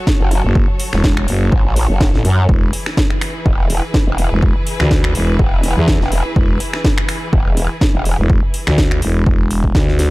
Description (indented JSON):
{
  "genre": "bass house",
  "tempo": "124 BPM",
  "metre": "4/4",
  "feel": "swing 55% on 16ths",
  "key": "unclear",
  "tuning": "A4 = 440 Hz",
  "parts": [
    { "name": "clear studio string section", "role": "sustained chords", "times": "0.0-10.1 s", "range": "E3 to C#5", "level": "-26 LUFS", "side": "equal", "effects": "sidechain pumping" },
    { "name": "electronic kick drum", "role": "drums", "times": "0.1-9.9 s", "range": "none", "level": "-15 LUFS", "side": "equal", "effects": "none" },
    { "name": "house drum kit", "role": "drums", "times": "0.1-10.1 s", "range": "finger snaps, hi-hat, snare drum", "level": "-22 LUFS", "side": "equal", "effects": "overdrive" },
    { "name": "growl bass", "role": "bass", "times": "0.2-8.2 s", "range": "E1 to F#2", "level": "-15 LUFS", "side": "equal", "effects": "chorus, tube saturation, sidechain pumping" },
    { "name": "growling FM bass", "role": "bass", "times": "0.4-10.1 s", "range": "E1 to E2", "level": "-15 LUFS", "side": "equal", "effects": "overdrive, sidechain pumping" }
  ],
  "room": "little or no reverb",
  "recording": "dark, warm production",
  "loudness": "-12 LUFS",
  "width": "side -20 dB against mid",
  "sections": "0.0-10.1 A section",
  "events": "none",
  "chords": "0.0 F#m; 2.5 E"
}